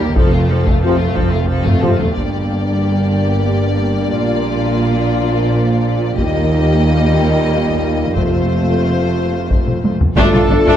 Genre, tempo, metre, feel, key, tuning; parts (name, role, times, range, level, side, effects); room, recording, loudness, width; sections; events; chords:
cinematic, epic orchestral film score; 60 BPM (dotted quarters); 6/8; straight; G minor; A4 = 440 Hz
rich symphonic violin section; melody; 0.0-10.8 s; F4 to Eb5; -24 LUFS; left 6 dB
warm symphonic violin section; second line; 0.0-10.8 s; A3 to G4; -24 LUFS; left 4 dB
rich symphonic viola section; accompaniment; 0.0-10.8 s; F3 to D4; -23 LUFS; right 2 dB
rich symphonic cello section; bass; 0.0-10.7 s; Eb2 to Bb2; -18 LUFS; right 1 dB
warm symphonic double bass section; bass; 0.0-10.6 s; F1 to Eb2; -20 LUFS; right 2 dB
taiko ensemble; drums; 0.2-10.8 s; -18 LUFS; equal
mellow French horn section; sustained chords; 0.8-10.8 s; A3 to F4; -21 LUFS; left 3 dB
warm trombone section; sustained chords; 0.8-10.8 s; Bb2 to A3; -24 LUFS; right 5 dB
warm woodwind section; sustained chords; 10.2-10.8 s; D4 to D5; -22 LUFS; right 1 dB
mellow trumpet; stabs; 10.2-10.8 s; A4; -19 LUFS; right 4 dB
moderate scoring stage reverb, RT60 1.8 s; dark, warm production; -13 LUFS; side -10 dB against mid
0.0-2.2 A section; 2.2-10.2 B section
drum fill 1.7-2.2, 9.7-10.2
0.2 F; 2.2 Gm; 4.2 Bb; 6.2 Eb; 8.2 F; 10.2 Dm/G